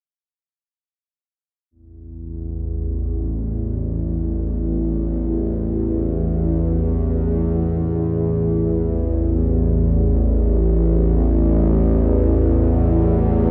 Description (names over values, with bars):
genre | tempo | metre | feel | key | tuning
ambient | free time | none | none | unclear | A4 = 440 Hz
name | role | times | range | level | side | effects
bowed-like drone | drone | 2.1-13.5 s | A1 to E2 | -20 LUFS | equal | built-in reverb
room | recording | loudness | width
moderate plate reverb, RT60 3.0 s | cassette tape | -20 LUFS | mono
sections
1.7-13.5 A section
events
none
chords
1.7 A5